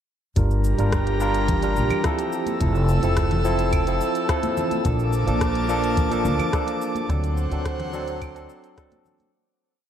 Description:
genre	sunset chillout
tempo	107 BPM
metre	4/4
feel	straight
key	G dorian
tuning	A4 = 440 Hz
part	barky tine electric piano	accompaniment	0.4-9.3 s	F3 to Bb4	-25 LUFS	equal	auto-pan, ping-pong delay
part	airy breathy pad	sustained chords	0.4-9.3 s	Bb3 to E6	-28 LUFS	right 1 dB	chorus
part	upright bass	bass	0.4-8.5 s	F1 to D2	-23 LUFS	equal	none
part	electronic kick drum	drums	0.4-8.9 s	none	-25 LUFS	equal	none
part	smooth R&B drum kit	drums	0.4-9.3 s	claves, hi-hat, rim click, shaker	-33 LUFS	equal	none
part	congas	percussion	1.5-9.3 s	none	-32 LUFS	left 2 dB	none
room	moderate plate reverb, RT60 2.2 s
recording	dreamy mix soaked in reverb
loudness	-20 LUFS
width	side -9 dB against mid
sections	0.4-9.3 chorus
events	fade-out 6.3-9.3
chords	0.4 Gm7; 2.3 Fmaj7; 4.8 Bbmaj7; 7.1 D7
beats	| 0.36 0.93 1.49 2.05 | 2.61 3.17 3.73 4.29 | 4.85 5.41 5.97 6.53 | 7.09 7.65 8.21 8.78

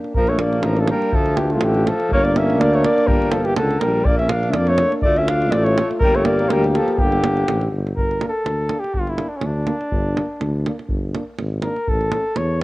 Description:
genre	balkan folk, Balkan brass band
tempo	123 BPM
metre	2/4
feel	swing 55% on 16ths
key	G dorian sharp4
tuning	A4 = 440 Hz
part	clear French horn	accompaniment	0.0-12.6 s	C#4 to G4	-26 LUFS	left 3 dB	cassette tape
part	warm euphonium	accompaniment	0.0-12.2 s	A3 to Bb3	-26 LUFS	right 2 dB	cassette tape
part	davul	percussion	0.0-12.6 s	none	-24 LUFS	right 1 dB	none
part	warm flugelhorn	melody	0.1-12.6 s	C#4 to F5	-21 LUFS	equal	cassette tape
part	warm alto saxophone	second line	0.2-7.7 s	D3 to D4	-26 LUFS	left 2 dB	cassette tape
part	mellow tuba	bass	0.2-12.6 s	G1 to F2	-22 LUFS	equal	none
room	moderate spring reverb, RT60 2.3 s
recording	home recording on cassette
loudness	-16 LUFS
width	side -19 dB against mid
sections	0.2-8.0 A section; 8.0-12.6 B section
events	flugelhorn solo 8.0-12.6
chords	0.2 Bb; 1.1 Dm; 2.1 Gm; 4.1 Bb; 5.0 Dm; 6.0 Gm; 11.9 A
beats	| 0.16 0.65 | 1.14 1.62 | 2.11 2.60 | 3.08 3.57 | 4.06 4.54 | 5.03 5.52 | 6.00 6.49 | 6.98 7.47 | 7.96 8.45 | 8.94 9.43 | 9.92 10.41 | 10.90 11.40 | 11.89 12.38

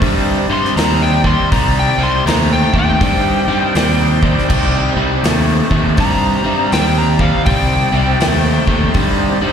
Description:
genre	blues rock power trio and southern rock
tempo	81 BPM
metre	4/4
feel	swing 63% on 8ths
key	C minor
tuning	A4 = 440 Hz
part	overdriven tonewheel organ	sustained chords	0.0-9.5 s	C4 to Eb5	-26 LUFS	right 2 dB	none
part	crunchy overdriven guitar	riff	0.0-9.5 s	C3 to A3	-16 LUFS	left 1 dB	slapback echo
part	growling fingered electric bass	bass	0.0-9.5 s	C2 to G2	-16 LUFS	equal	overdrive
part	big rock drum kit	drums	0.0-9.2 s	crash cymbal, hi-hat, kick drum, snare drum	-20 LUFS	equal	none
part	overdriven slide guitar	melody	0.5-8.9 s	F5 to C6	-20 LUFS	left 1 dB	slapback echo, analog delay
room	studio reverb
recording	live gig heard through the venue's PA, recital hall reverb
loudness	-12 LUFS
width	side -8 dB against mid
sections	0.0-9.5 A section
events	electric slide guitar solo 0.0-9.5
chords	0.0 Cm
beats	0.01 0.76 | 1.51 2.26 3.01 3.75 | 4.50 5.24 5.99 6.73 | 7.47 8.21 8.95

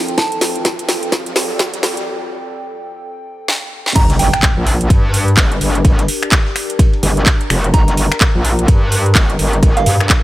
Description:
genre	bass house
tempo	127 BPM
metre	4/4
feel	swing 60% on 16ths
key	G minor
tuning	A4 = 441 Hz
part	dark analog pad	sustained chords	0.0-10.2 s	F3 to G5	-29 LUFS	right 2 dB	chorus, sidechain pumping
part	riser and impact	sound effects	0.1-5.8 s	none	-25 LUFS	equal	none
part	warbly tape-like pad	texture	0.0-10.2 s	D4 to G5	-25 LUFS	left 1 dB	chorus, built-in reverb, phaser, sidechain pumping
part	house drum kit	drums	0.1-10.2 s	crash cymbal, finger snaps, handclaps, hi-hat, snare drum	-17 LUFS	equal	none
part	soft synth bell	melody	0.2-0.4, 4.0-4.4, 7.7-10.0 s	F5 to Bb5	-21 LUFS	right 3 dB	chorus, tape echo
part	electronic kick drum	drums	0.2-10.2 s	none	-13 LUFS	equal	none
part	metallic wobble bass	bass	4.0-10.1 s	F1 to G2	-15 LUFS	equal	distortion, chorus, overdrive, sidechain pumping
part	breakbeat sampler-style drum kit	drums	4.0-10.2 s	hi-hat, ride cymbal, snare drum	-31 LUFS	right 1 dB	none
room	light reverb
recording	high-pass filter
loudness	-12 LUFS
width	side -16 dB against mid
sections	0.0-4.0 A section; 4.0-10.2 B section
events	build-up 0.0-4.0; drum fill 0.0-2.1, 3.5-4.0; filter sweep 0.0-4.0; riser 0.1-2.1; break 2.1-4.0; drop 4.0-10.2; impact 4.0-5.8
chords	0.0 Fadd9; 4.0 Gm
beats	| 0.18 0.65 1.12 1.59 | 2.07 2.54 3.01 3.48 | 3.96 4.43 4.90 5.38 | 5.85 6.32 6.79 7.26 | 7.74 8.21 8.68 9.15 | 9.63 10.10

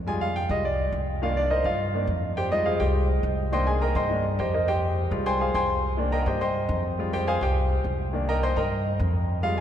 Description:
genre	latin, salsa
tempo	208 BPM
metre	4/4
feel	straight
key	C minor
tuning	A4 = 440 Hz
part	upright bass	bass	0.0-9.6 s	C2 to G2	-27 LUFS	equal	none
part	clear concert grand piano	accompaniment	0.1-9.6 s	Eb3 to C6	-25 LUFS	equal	none
room	wet cathedral reverb, RT60 4.8 s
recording	recorded in a church or concert hall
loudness	-23 LUFS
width	side -10 dB against mid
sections	0.0-9.6 A section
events	grand piano solo 0.0-9.6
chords	0.1 Fmadd9; 1.2 Cm7; 2.4 Fmadd9; 3.5 Cm7; 4.7 Fmadd9; 5.8 Cm7; 7.0 Fmadd9; 8.1 Cm7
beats	| 0.07 0.35 0.64 0.93 | 1.22 1.51 1.80 2.09 | 2.38 2.66 2.95 3.24 | 3.53 3.82 4.11 4.39 | 4.68 4.97 5.26 5.55 | 5.84 6.12 6.41 6.70 | 6.99 7.28 7.57 7.85 | 8.14 8.43 8.72 9.00 | 9.29 9.58

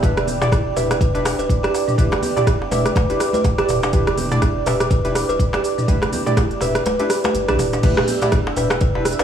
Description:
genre	afro house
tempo	123 BPM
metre	4/4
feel	swing 57% on 16ths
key	E minor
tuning	A4 = 440 Hz
part	dark analog pad	sustained chords	0.0-9.2 s	D5 to E6	-27 LUFS	right 3 dB	chorus, sidechain pumping
part	buzzing kalimba	arpeggios	0.0-9.2 s	B3 to B4	-23 LUFS	equal	sidechain pumping, tape echo
part	warm analog keys	stabs	0.0-9.2 s	D4 to E5	-24 LUFS	equal	chorus, sidechain pumping, tape echo
part	round analog bass	bass	0.0-9.2 s	D1 to B1	-27 LUFS	equal	transformer saturation, sidechain pumping
part	afro-pop drum kit	drums	0.0-9.2 s	crash cymbal, hi-hat, rim click, shaker, toms	-23 LUFS	right 1 dB	none
part	electronic kick drum	drums	0.0-8.9 s	none	-19 LUFS	equal	none
part	congas	percussion	0.0-9.0 s	none	-30 LUFS	right 5 dB	none
part	darbuka	percussion	0.0-9.2 s	none	-29 LUFS	left 2 dB	none
room	light reverb, digital ambience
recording	dry, gritty hardware recording, small room ambience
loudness	-16 LUFS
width	side -9 dB against mid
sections	0.0-7.8 A section; 7.8-9.2 B section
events	kick drops out 6.9-7.8; drum fill 7.3-7.8; drop 7.8-9.2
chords	0.0 Em7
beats	| 0.03 0.52 1.01 1.50 | 1.98 2.47 2.96 3.45 | 3.93 4.42 4.91 5.40 | 5.88 6.37 6.86 7.35 | 7.84 8.32 8.81

